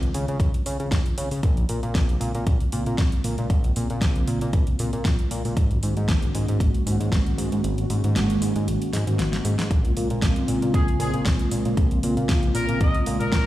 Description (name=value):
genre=nu-disco, nu disco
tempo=116 BPM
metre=4/4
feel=swing 53% on 16ths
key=Bb minor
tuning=A4 = 440 Hz
part: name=mellow synth brass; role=accompaniment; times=0.0-13.5 s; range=Db3 to Gb4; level=-27 LUFS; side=equal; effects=chorus, sidechain pumping, tape echo
part: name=fat analog bass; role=bass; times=0.0-13.4 s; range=Ab1 to Db3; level=-25 LUFS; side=equal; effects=none
part: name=pop drum kit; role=drums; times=0.0-13.4 s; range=hi-hat, snare drum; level=-31 LUFS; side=equal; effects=none
part: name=electronic kick drum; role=drums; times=0.4-13.4 s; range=none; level=-22 LUFS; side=equal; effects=none
part: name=clear trumpet section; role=melody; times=10.7-13.5 s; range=Ab4 to Eb5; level=-29 LUFS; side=left 1 dB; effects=digital delay
room=light reverb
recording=played on a big sound system in a bare room, large studio reverb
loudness=-20 LUFS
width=side -15 dB against mid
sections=0.0-13.5 A section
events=filter sweep on analog polysynth 0.0-13.5; kick drops out 7.6-9.7; drum fill 8.9-9.7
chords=0.0 Dbmaj9; 1.4 Bbm9; 5.6 Ab9sus4; 9.7 Bbm9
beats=0.40 0.92 | 1.43 1.95 2.47 2.98 | 3.50 4.02 4.54 5.05 | 5.57 6.09 6.60 7.12 | 7.64 8.16 8.67 9.19 | 9.71 10.22 10.74 11.26 | 11.78 12.29 12.81 13.33